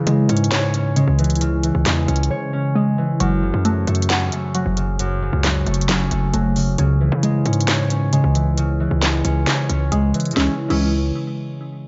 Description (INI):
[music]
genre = hip hop, trap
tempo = 134 BPM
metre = 4/4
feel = half-time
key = C# minor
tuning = A4 = 440 Hz
[part]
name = concert harp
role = accompaniment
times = 0.0-10.9 s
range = F#2 to C#5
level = -23 LUFS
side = equal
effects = low-pass filter
[part]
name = glassy wavetable pluck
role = arpeggios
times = 0.0-10.9 s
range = C#3 to F#5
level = -25 LUFS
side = equal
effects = chorus, low-pass filter, delay
[part]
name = hard-hitting 808-style bass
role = bass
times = 0.0-11.1 s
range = F#1 to C#3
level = -24 LUFS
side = equal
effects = none
[part]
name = trap drum kit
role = drums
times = 0.1-10.8 s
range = crash cymbal, handclaps, hi-hat, snare drum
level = -26 LUFS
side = equal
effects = none
[sound]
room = light reverb, digital ambience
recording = nothing above 7.6 kHz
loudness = -19 LUFS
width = mono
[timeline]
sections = 0.0-3.2 A section; 3.2-10.4 B section; 10.4-11.9 C section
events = drums muted 2.3-3.2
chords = 0.0 C#m; 3.2 F#m; 6.8 C#m